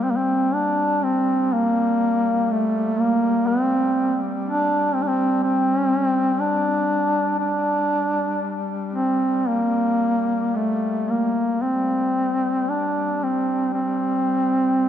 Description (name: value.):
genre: caucasian folk, Caucasian lament.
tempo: 55-62 BPM.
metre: 4/4.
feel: rubato.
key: G minor.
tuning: A4 = 440 Hz.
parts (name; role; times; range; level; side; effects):
mellow duduk; melody; 0.0-14.9 s; A3 to D4; -19 LUFS; equal; none.
warm duduk; drone; 0.0-14.9 s; G3; -29 LUFS; left 4 dB; none.
room: wet cathedral reverb, RT60 4.6 s.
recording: none.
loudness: -19 LUFS.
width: side -10 dB against mid.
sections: 0.0-14.9 A section.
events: none.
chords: none.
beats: 0.54 1.53 2.52 | 3.48 4.46 5.45 6.42 | 7.41 8.44 9.50 10.58 | 11.66 12.72 13.76 14.78.